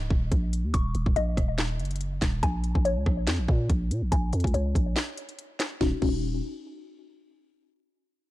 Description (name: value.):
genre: hip hop, trap.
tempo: 142 BPM.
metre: 4/4.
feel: half-time.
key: Eb minor.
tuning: A4 = 440 Hz.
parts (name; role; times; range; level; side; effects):
hollow square pluck; arpeggios; 0.0-6.2 s; Db4 to Db6; -32 LUFS; left 4 dB; chorus, low-pass filter, ping-pong delay.
growling 808-style bass; bass; 0.0-6.4 s; Eb1 to Bb2; -27 LUFS; equal; none.
trap drum kit; drums; 0.1-6.1 s; crash cymbal, handclaps, hi-hat, kick drum, rim click, snare drum; -27 LUFS; equal; vintage 12-bit sampler grit.
room: little or no reverb.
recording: dark, warm production.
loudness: -24 LUFS.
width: side -16 dB against mid.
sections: 0.0-5.8 A section; 5.8-7.5 B section.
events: filter sweep on synth pluck 0.0-5.8; break 5.0-5.8.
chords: 0.0 Ebm7; 2.4 Bbm7; 5.8 Ebm7.